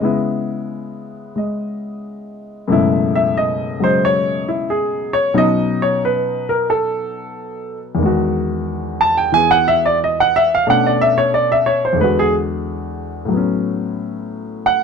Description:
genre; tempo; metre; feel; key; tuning
solo jazz; 90 BPM; 4/4; swing 69% on 8ths; unclear; A4 = 440 Hz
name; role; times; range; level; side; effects
warm baby grand piano; solo; 0.0-14.8 s; E2 to A5; -15 LUFS; equal; none
room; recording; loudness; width
light reverb; close, detailed microphones; -15 LUFS; side -6 dB against mid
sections
0.0-2.7 A section; 2.7-14.8 B section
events
grand piano solo 2.7-14.8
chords
0.0 C#m7; 2.7 F#m11; 5.3 B9; 8.0 Emaj9; 10.7 Bm9; 12.0 E9; 13.3 A69

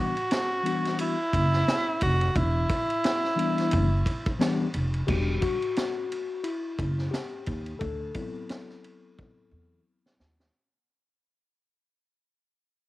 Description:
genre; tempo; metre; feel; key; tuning
hip hop, jazz-hop; 88 BPM; 4/4; swing 59% on 16ths; E minor; A4 = 441 Hz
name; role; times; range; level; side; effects
warm tenor saxophone; melody; 0.0-4.4 s; E4 to F#4; -27 LUFS; right 1 dB; cassette tape
mellow tine electric piano; accompaniment; 0.0-10.5 s; E3 to F#5; -30 LUFS; left 4 dB; slow stereo tremolo
vintage drum kit; drums; 0.2-10.5 s; crash cymbal, hi-hat, kick drum, ride cymbal, snare drum; -31 LUFS; equal; cassette tape
upright bass; bass; 1.3-10.5 s; E1 to E2; -26 LUFS; equal; none
room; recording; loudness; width
light reverb; home recording on cassette, vinyl crackle; -24 LUFS; side -17 dB against mid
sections
0.0-5.1 A section; 5.1-10.5 B section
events
fade-out 5.1-10.5; tine electric piano solo 5.1-10.5; drum fill 9.2-10.5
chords
0.0 Em9; 7.8 D13 (rootless)

